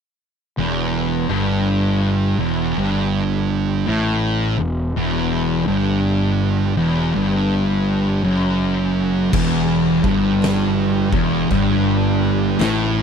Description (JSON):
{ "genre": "stoner and doom metal", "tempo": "55 BPM", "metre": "4/4", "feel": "swing 65% on 8ths", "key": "E minor", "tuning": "A4 = 438 Hz", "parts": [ { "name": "thick fuzz guitar", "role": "riff", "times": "0.6-13.0 s", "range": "E2 to A2", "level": "-21 LUFS", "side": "left 9 dB", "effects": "distortion" }, { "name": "thick fuzz guitar", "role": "riff", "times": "0.6-13.0 s", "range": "E2 to A2", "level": "-20 LUFS", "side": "right 8 dB", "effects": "distortion" }, { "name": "fuzz fingered electric bass", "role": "bass", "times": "0.6-13.0 s", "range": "E1 to A1", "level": "-24 LUFS", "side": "equal", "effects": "overdrive" }, { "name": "fuzz guitar", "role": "riff", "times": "9.3-13.0 s", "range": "E2 to A2", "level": "-22 LUFS", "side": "equal", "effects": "distortion" }, { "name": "oversized low-tuned drum kit", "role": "drums", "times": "9.3-12.9 s", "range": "crash cymbal, kick drum, snare drum", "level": "-24 LUFS", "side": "left 1 dB", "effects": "none" } ], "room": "little or no reverb", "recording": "none", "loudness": "-16 LUFS", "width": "side -6 dB against mid", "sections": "0.6-9.3 A section; 9.3-13.0 B section", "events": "none", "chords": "0.6 Em" }